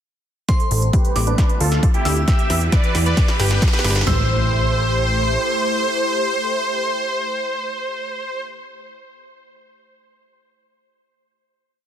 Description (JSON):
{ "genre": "uplifting trance", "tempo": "134 BPM", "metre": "4/4", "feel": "straight", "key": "A minor", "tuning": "A4 = 441 Hz", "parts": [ { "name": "supersaw chords", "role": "melody", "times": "0.5-8.4 s", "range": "D4 to E5", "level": "-22 LUFS", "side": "right 1 dB", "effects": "sidechain pumping, low-pass filter, ping-pong delay" }, { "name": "glassy synth bell", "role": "second line", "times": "0.5-8.8 s", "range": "C6 to E6", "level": "-30 LUFS", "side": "right 1 dB", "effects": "chorus, ping-pong delay" }, { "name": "lush unison pad", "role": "sustained chords", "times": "0.5-8.4 s", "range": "D3 to C5", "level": "-28 LUFS", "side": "left 1 dB", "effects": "chorus, phaser, sidechain pumping" }, { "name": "big-room dance drum kit", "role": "drums", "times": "0.5-4.1 s", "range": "congas, hi-hat, snare drum", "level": "-27 LUFS", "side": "right 1 dB", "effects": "overdrive, high-pass filter on snare, high-pass filter on hats, high-pass filter on perc, high-pass filter on room" }, { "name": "punchy analog drum machine", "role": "drums", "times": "0.5-4.2 s", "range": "kick drum, snare drum, toms", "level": "-17 LUFS", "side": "equal", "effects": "overdrive" }, { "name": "riser and impact", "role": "sound effects", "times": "1.6-8.8 s", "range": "none", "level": "-30 LUFS", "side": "right 1 dB", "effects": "none" }, { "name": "plucky analog bass", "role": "bass", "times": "0.7-5.4 s", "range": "G1 to E2", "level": "-19 LUFS", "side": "equal", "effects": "sidechain pumping" } ], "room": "little or no reverb", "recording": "dense, heavily limited modern master", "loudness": "-16 LUFS", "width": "side -10 dB against mid", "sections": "0.5-4.1 build; 4.1-7.7 final chord", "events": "build-up 0.5-4.1; drum fill 0.5-4.1; filter sweep on supersaw synth 0.5-4.1; riser 1.6-4.1", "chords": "0.5 Am7; 1.4 Dm7; 2.3 Em; 3.2 G; 4.1 Am7" }